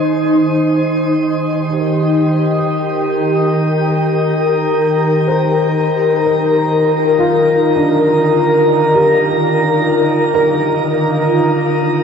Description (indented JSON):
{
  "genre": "ambient",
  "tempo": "69 BPM",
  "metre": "4/4",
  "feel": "straight",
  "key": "Eb major",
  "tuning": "A4 = 440 Hz",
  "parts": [
    { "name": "glassy FM pad", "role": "sustained chords", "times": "0.0-12.0 s", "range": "D3 to C5", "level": "-12 LUFS", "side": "left 1 dB", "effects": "ensemble chorus, built-in reverb" },
    { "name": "felt-muted upright piano", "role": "arpeggios", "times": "0.0-12.0 s", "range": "D4 to C5", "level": "-21 LUFS", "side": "equal", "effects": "ping-pong delay" }
  ],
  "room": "wet shimmer reverb, RT60 8.9 s",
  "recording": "dark, warm production",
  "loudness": "-12 LUFS",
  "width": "side -6 dB against mid",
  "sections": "0.0-12.0 A section",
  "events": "fade-in on felt piano 0.0-12.0",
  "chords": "0.0 Eb; 5.8 Gm7"
}